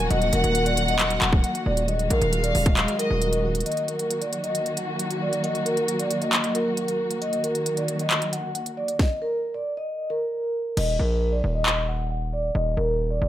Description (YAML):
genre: hip hop, trap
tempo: 135 BPM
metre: 4/4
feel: half-time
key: Eb harmonic minor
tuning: A4 = 440 Hz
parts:
  - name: vibraphone with soft mallets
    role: melody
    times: 0.0-13.3 s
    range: Bb4 to Gb5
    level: -26 LUFS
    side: equal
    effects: low-pass filter
  - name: warm studio violin section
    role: second line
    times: 0.0-3.2 s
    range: Eb5 to Gb5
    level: -29 LUFS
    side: left 1 dB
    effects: ping-pong delay
  - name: dark symphonic string section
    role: sustained chords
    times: 0.0-9.0 s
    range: Eb3 to Gb4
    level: -28 LUFS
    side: equal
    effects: none
  - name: distorted 808-style bass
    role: bass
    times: 0.0-3.6, 10.8-13.3 s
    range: Eb1 to Bb1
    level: -25 LUFS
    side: equal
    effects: distortion
  - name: trap drum kit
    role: drums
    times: 0.1-11.8 s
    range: crash cymbal, handclaps, hi-hat, kick drum, snare drum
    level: -25 LUFS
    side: equal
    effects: none
room: light reverb, small room ambience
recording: none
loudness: -22 LUFS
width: side -12 dB against mid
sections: 0.0-3.7 A section; 3.7-10.8 B section; 10.8-13.3 C section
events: hi-hats muted 10.8-13.3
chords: 0.0 Ebm; 10.8 Eb5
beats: | 0.10 0.55 0.99 1.44 | 1.88 2.33 2.77 3.22 | 3.66 4.11 4.55 4.99 | 5.44 5.88 6.33 6.77 | 7.22 7.66 8.11 8.55 | 8.99 9.44 9.88 10.33 | 10.77 11.22 11.66 12.11 | 12.55 12.99